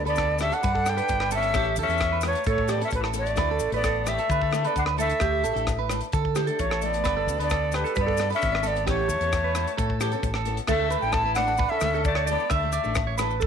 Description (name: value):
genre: highlife guitar band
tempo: 131 BPM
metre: 4/4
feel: straight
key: unclear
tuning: A4 = 443 Hz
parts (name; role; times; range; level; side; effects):
- breathy bright jazz flute; melody; 0.0-13.2 s; B4 to A5; -27 LUFS; equal; none
- clear tenor saxophone; second line; 0.0-13.2 s; E3 to E4; -33 LUFS; left 12 dB; none
- clean electric guitar; arpeggios; 0.0-13.5 s; G4 to E5; -29 LUFS; right 11 dB; phaser, slapback echo
- fingered electric bass; bass; 0.0-13.5 s; G1 to D3; -29 LUFS; left 1 dB; none
- picked steel-string acoustic guitar; accompaniment; 0.1-13.3 s; E3 to A4; -35 LUFS; left 14 dB; none
- tight funk drum kit; drums; 0.1-13.5 s; crash cymbal, hi-hat, kick drum, rim click; -30 LUFS; left 2 dB; none
- maracas; percussion; 0.2-13.5 s; none; -41 LUFS; left 19 dB; none
room: moderate echo chamber reverb, RT60 1.3 s, small room reverb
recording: 1960s-style stereo with parts hard left and right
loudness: -22 LUFS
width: side -7 dB against mid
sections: 0.0-10.7 A section; 10.7-13.5 B section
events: none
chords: 0.0 Gadd9; 1.6 Aadd9; 3.4 Dsus2; 7.0 Gadd9; 8.9 Aadd9; 10.7 Dsus2